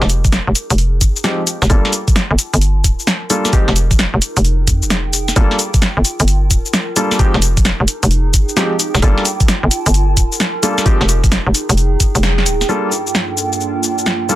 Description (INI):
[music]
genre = UK garage, two-step garage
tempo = 131 BPM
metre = 4/4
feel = swing 66% on 16ths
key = unclear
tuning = A4 = 435 Hz
[part]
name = hollow knocking FM bass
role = bass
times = 0.0-12.6 s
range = D1 to F2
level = -14 LUFS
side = equal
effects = none
[part]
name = punchy analog drum machine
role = drums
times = 0.0-14.4 s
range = cabasa, hi-hat, snare drum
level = -17 LUFS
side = equal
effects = none
[part]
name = warbly tape-like pad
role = texture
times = 0.2-14.4 s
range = Bb3 to A5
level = -24 LUFS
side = right 3 dB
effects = chorus, built-in reverb, sidechain pumping
[part]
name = electronic kick drum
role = drums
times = 0.2-12.1 s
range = none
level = -14 LUFS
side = equal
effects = none
[part]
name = warm baby grand piano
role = stabs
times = 1.2-14.4 s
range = F3 to A4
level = -18 LUFS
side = left 1 dB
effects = low-pass filter, digital delay
[part]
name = airy breathy pad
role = sustained chords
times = 12.7-14.4 s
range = G2 to A4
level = -23 LUFS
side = right 4 dB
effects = chorus, sidechain pumping
[sound]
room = little or no reverb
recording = dense, heavily limited modern master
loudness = -12 LUFS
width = side -15 dB against mid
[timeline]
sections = 0.0-12.7 A section; 12.7-14.4 B section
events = fade-in on ambient pad 0.0-12.7; filter sweep on grand piano 0.0-12.7; band accent 12.2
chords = 0.0 Fm9; 1.7 Gm9; 3.5 Fm9; 5.4 Gm9; 7.2 Fm9; 9.0 Gm9; 10.9 Fm9; 12.7 Gm9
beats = 0.32 0.78 1.24 | 1.70 2.15 2.61 3.07 | 3.53 3.99 4.45 4.90 | 5.36 5.82 6.28 6.74 | 7.19 7.65 8.11 8.57 | 9.03 9.48 9.94 10.40 | 10.86 11.32 11.77 12.23 | 12.69 13.15 13.61 14.06